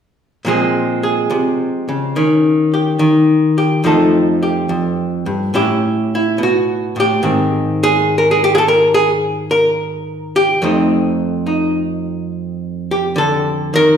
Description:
solo jazz; 71 BPM; 4/4; swing 68% on 8ths; Ab major; A4 = 440 Hz
archtop guitar, miked and amplified; solo; 0.4-14.0 s; F2 to Bb4; -13 LUFS; equal
wet recital hall reverb, RT60 1.3 s; recorded in a church or concert hall; -13 LUFS; side -8 dB against mid
0.4-7.2 A section; 7.2-14.0 B section
0.4 Bbm9; 2.1 Eb7; 3.8 F7; 5.5 A13; 7.2 Abadd9; 10.6 F9

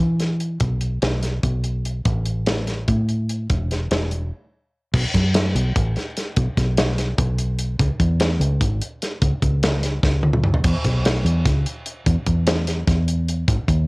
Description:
math rock and midwest emo; 294 BPM (eighths); 7/8; straight; E major; A4 = 444 Hz
fingered electric bass; bass; 0.0-13.9 s; E1 to E3; -20 LUFS; equal
modern studio drum kit; drums; 0.2-13.8 s; crash cymbal, hi-hat, kick drum, snare drum, toms; -22 LUFS; equal
little or no reverb; home recording on cassette; -18 LUFS; side -27 dB against mid
0.0-4.9 A section; 4.9-13.9 B section
break 4.3-4.9; drum fill 10.0-10.6

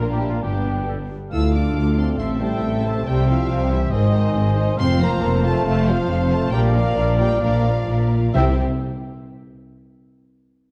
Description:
cinematic; 136 BPM; 4/4; uneven beats; C mixolydian; A4 = 440 Hz
warm chamber violin section; melody; 0.0-8.6 s; F4 to E6; -34 LUFS; equal
small flute group; second line; 0.0-8.6 s; F5 to Bb5; -37 LUFS; equal
warm cor anglais; second line; 0.0-8.5 s; F4 to F5; -36 LUFS; equal
warm symphonic violin section; second line; 0.0-8.6 s; D4 to A5; -39 LUFS; equal
warm symphonic viola section; accompaniment; 0.0-8.6 s; Bb3 to D5; -33 LUFS; equal
dark trombone section; sustained chords; 0.0-8.6 s; Bb2 to D4; -33 LUFS; equal
mellow French horn section; sustained chords; 0.0-8.5 s; C3 to Bb4; -29 LUFS; equal
mellow trumpet; stabs; 0.0-8.5 s; C5 to Bb5; -31 LUFS; equal
rich studio double bass section; bass; 0.0-8.6 s; F1 to D2; -24 LUFS; equal
warm symphonic cello section; bass; 0.0-8.6 s; D2 to C3; -25 LUFS; equal
dark clarinet; second line; 0.9-8.5 s; G4 to D5; -35 LUFS; equal
timpani; percussion; 8.3-8.6 s; C3; -29 LUFS; equal
moderate scoring stage reverb, RT60 1.7 s; dark, warm production; -20 LUFS; mono
0.0-1.3 A section; 1.3-8.4 B section; 8.4-10.2 C section
slowing down 3.9-8.4
0.4 G; 1.3 Dm; 2.2 Am; 3.1 C; 3.9 Ab; 4.8 F; 6.5 Bb; 8.4 C

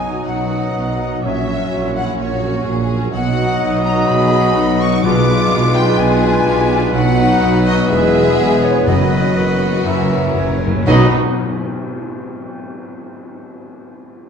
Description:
classical, dramatic, fast romantic movement for symphony orchestra; 126 BPM; 4/4; rubato; B major; A4 = 439 Hz
warm symphonic violin section; melody; 0.0-11.1 s; A#4 to D6; -24 LUFS; left 4 dB
mellow clarinet; second line; 0.0-11.1 s; B3 to F4; -26 LUFS; left 2 dB
silver concert flute; second line; 0.0-11.1 s; A#4 to D6; -26 LUFS; left 2 dB
warm symphonic violin section; second line; 0.0-11.1 s; C#4 to B4; -27 LUFS; left 3 dB
warm bassoon; accompaniment; 0.0-11.1 s; E3 to G#3; -24 LUFS; right 3 dB
warm studio viola section; accompaniment; 0.0-11.1 s; B3 to G#4; -25 LUFS; right 3 dB
dark French horn section; sustained chords; 0.0-11.1 s; B3 to F#4; -24 LUFS; left 4 dB
mellow trombone section; sustained chords; 0.0-11.1 s; F#2 to G#3; -26 LUFS; right 4 dB
concert harp; arpeggios; 0.0-12.8 s; E2 to F#5; -24 LUFS; left 10 dB
mellow trumpet section; stabs; 0.0-11.1 s; B4 to E5; -22 LUFS; equal
mellow tuba; bass; 0.0-11.1 s; E1 to B1; -22 LUFS; right 2 dB
warm symphonic cello section; bass; 0.0-11.1 s; E2 to B2; -23 LUFS; right 4 dB
warm symphonic double bass section; bass; 0.0-11.1 s; E1 to B1; -22 LUFS; right 3 dB
timpani; percussion; 5.0-5.7, 8.9-11.1 s; F#2 to B2; -24 LUFS; left 1 dB
cymbal swell and tam-tam; percussion; 7.0-12.7 s; -29 LUFS; left 2 dB
wet scoring stage reverb, RT60 1.8 s; dark, warm production; -13 LUFS; side -6 dB against mid
0.0-10.9 A section; 10.9-12.8 B section
timpani fill 9.9-10.9; band accent 10.9-11.4
0.0 B; 1.2 F#7/A#; 3.1 B; 5.0 Bdim7; 7.0 B; 7.9 E; 8.9 B/F#; 9.9 F#7; 10.9 B

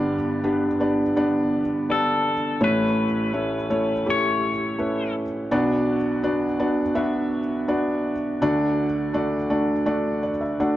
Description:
acoustic folk-pop ballad; 83 BPM; 4/4; straight; D major; A4 = 441 Hz
felt-muted upright piano; melody; 0.0-10.8 s; G1 to F#5; -21 LUFS; equal
pedal steel guitar; second line; 1.9-5.1 s; A4 to C#5; -25 LUFS; left 3 dB
moderate plate reverb, RT60 2.9 s; dark, warm production; -20 LUFS; side -14 dB against mid
0.0-10.8 A section
pedal steel guitar solo 0.0-10.8; felt piano fill 9.9-10.8
0.0 G; 2.6 A; 5.5 Bm; 8.4 D

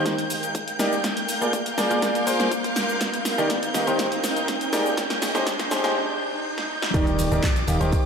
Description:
piano house; 122 BPM; 4/4; straight; Eb major; A4 = 445 Hz
string machine, violins; sustained chords; 0.0-8.1 s; D6 to G6; -30 LUFS; equal; ensemble chorus, sidechain pumping
bright baby grand piano; riff; 0.0-8.0 s; Eb3 to F5; -25 LUFS; equal; sidechain pumping, low-pass filter, ping-pong delay
riser and impact; sound effects; 0.3-8.1 s; -32 LUFS; right 1 dB
rich chamber string section; texture; 0.0-6.0 s; Eb4 to D6; -30 LUFS; right 1 dB; sidechain pumping
electronic kick drum; drums; 0.1-8.0 s; -26 LUFS; equal; high-pass filter on kick
punchy analog drum machine; drums; 0.1-8.0 s; cabasa, handclaps, hi-hat, snare drum; -28 LUFS; equal; overdrive
solid FM bass; bass; 6.9-8.0 s; Eb1; -25 LUFS; equal; sidechain pumping
tambourine and congas; percussion; 6.9-8.0 s; -37 LUFS; equal
wet lush hall reverb, RT60 1.7 s; dreamy mix soaked in reverb, high-pass filter; -21 LUFS; side -6 dB against mid
0.0-6.9 A section; 6.9-8.1 B section
build-up 0.0-6.9; drum fill 0.0-6.0, 6.6-6.9; riser 0.3-6.9; break 6.0-6.9; drop 6.9-8.1; impact 6.9-8.1
0.0 Eb; 1.0 Bb7; 3.0 Ebmaj7; 5.0 Abmaj7; 6.9 Ebmaj7

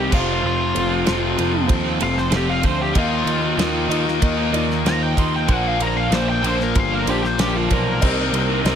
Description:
classic rock; 95 BPM; 4/4; straight; A4 = 440 Hz
smooth overdriven lead guitar; melody; 0.0-8.8 s; F4 to C6; -24 LUFS; left 1 dB; wah, plate reverb
clear upright piano; accompaniment; 0.0-8.8 s; C4 to Eb5; -29 LUFS; right 2 dB; plate reverb
tonewheel organ; sustained chords; 0.0-8.8 s; A3 to Eb5; -33 LUFS; equal
cranked stack guitar; riff; 0.0-8.8 s; F2 to Eb4; -24 LUFS; left 12 dB; overdrive
overdriven electric guitar; riff; 0.0-8.8 s; Bb2 to F4; -25 LUFS; right 14 dB
fuzz picked electric bass; bass; 0.0-8.8 s; F1 to Eb2; -24 LUFS; equal; overdrive
damped 70s drum kit; drums; 0.1-8.8 s; crash cymbal, kick drum, ride cymbal, snare drum; -24 LUFS; equal
cowbell; percussion; 8.0-8.8 s; -31 LUFS; left 2 dB
light reverb, small room reverb; -17 LUFS; side -8 dB against mid
0.0-8.8 A section
lead electric guitar solo 0.0-8.8
0.1 F; 3.0 Ebsus2; 5.5 Bbadd9; 8.0 Cm7

